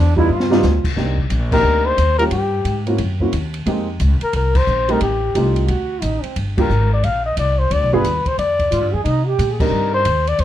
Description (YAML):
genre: jazz, small-group swing and bop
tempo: 178 BPM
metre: 4/4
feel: swing 64% on 8ths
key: C minor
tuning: A4 = 440 Hz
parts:
  - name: warm trombone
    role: second line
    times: 0.0-0.9, 5.4-6.4, 8.7-9.5 s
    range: C4 to Ab4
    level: -22 LUFS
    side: right 3 dB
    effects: none
  - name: upright bass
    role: bass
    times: 0.0-10.4 s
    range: G1 to C3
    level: -18 LUFS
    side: equal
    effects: none
  - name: dark baby grand piano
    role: accompaniment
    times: 0.2-10.0 s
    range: G3 to Bb4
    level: -20 LUFS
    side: right 2 dB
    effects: none
  - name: open jazz drum kit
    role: drums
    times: 0.2-10.4 s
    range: crash cymbal, hi-hat, kick drum, ride cymbal, snare drum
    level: -25 LUFS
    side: left 1 dB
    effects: none
  - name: breathy trumpet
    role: melody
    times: 1.5-10.4 s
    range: G4 to F5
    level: -18 LUFS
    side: left 3 dB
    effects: plate reverb
room: light reverb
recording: dark, warm production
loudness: -15 LUFS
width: side -12 dB against mid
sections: 1.0-10.4 A section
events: drum fill 0.3-0.6; band accent 1.5, 4.5, 6.5, 9.6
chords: 0.3 G7b13; 1.0 Cm9; 2.3 Gdim; 3.0 F#7#11; 3.7 Fm11; 5.0 Am7b5; 5.7 D; 6.4 Gm; 7.7 G7b9; 9.1 Cm9